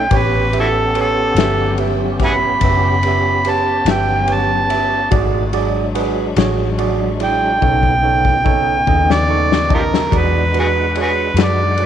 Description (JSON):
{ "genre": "slow blues", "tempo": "48 BPM (dotted quarters)", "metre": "12/8", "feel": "straight", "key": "unclear", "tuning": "A4 = 440 Hz", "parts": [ { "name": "overdriven harmonica", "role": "melody", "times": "0.0-11.9 s", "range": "E4 to B5", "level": "-16 LUFS", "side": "right 2 dB", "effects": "none" }, { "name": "tonewheel organ", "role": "sustained chords", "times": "0.0-11.9 s", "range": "C#3 to F#5", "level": "-23 LUFS", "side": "left 1 dB", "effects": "overdrive, chorus vibrato, slow rotary speaker" }, { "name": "vintage muted fingered electric bass", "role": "bass", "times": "0.0-11.9 s", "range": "F#1 to F#2", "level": "-20 LUFS", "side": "left 1 dB", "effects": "transformer saturation" }, { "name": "barky tine electric piano", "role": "accompaniment", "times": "0.1-11.9 s", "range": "D#4 to C#6", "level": "-22 LUFS", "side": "right 13 dB", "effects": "overdrive" }, { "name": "raw garage drum kit", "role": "drums", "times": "0.1-11.9 s", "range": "kick drum, ride cymbal, snare drum", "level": "-20 LUFS", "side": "left 5 dB", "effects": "none" } ], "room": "light reverb, studio ambience", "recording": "1960s-style stereo", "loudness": "-13 LUFS", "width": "side -9 dB against mid", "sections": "0.0-10.1 A section; 10.1-11.9 B section", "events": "harmonica solo 0.0-10.1; drum fill 7.6-10.1", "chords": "0.1 A9; 5.1 E9; 7.6 B9; 10.1 E9" }